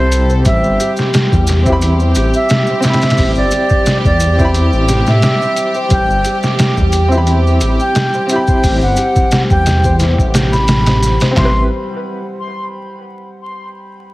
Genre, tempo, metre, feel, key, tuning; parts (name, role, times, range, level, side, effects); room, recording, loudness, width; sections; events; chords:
trip hop; 88 BPM; 4/4; swing 54% on 16ths; A minor; A4 = 438 Hz
concert flute; melody; 0.0-11.6 s; C5 to C6; -19 LUFS; equal; tape echo
warm upright piano; accompaniment; 0.0-11.7 s; C4 to B5; -20 LUFS; equal; tremolo, tape echo
warm studio violin section; sustained chords; 0.0-11.4 s; G4 to A4; -23 LUFS; equal
concert harp; arpeggios; 0.0-11.7 s; G3 to C5; -20 LUFS; equal; tape echo
dark detuned saw bass; bass; 0.0-11.7 s; G1 to A2; -14 LUFS; equal
trip hop sampler-style drum kit; drums; 0.1-11.5 s; handclaps, hi-hat, kick drum, snare drum; -14 LUFS; equal
maracas; percussion; 0.1-11.3 s; -28 LUFS; equal
light reverb, small room ambience; heavily compressed radio sound, vinyl crackle; -10 LUFS; side -18 dB against mid
0.0-11.4 A section; 11.4-14.1 B section
0.0 Am7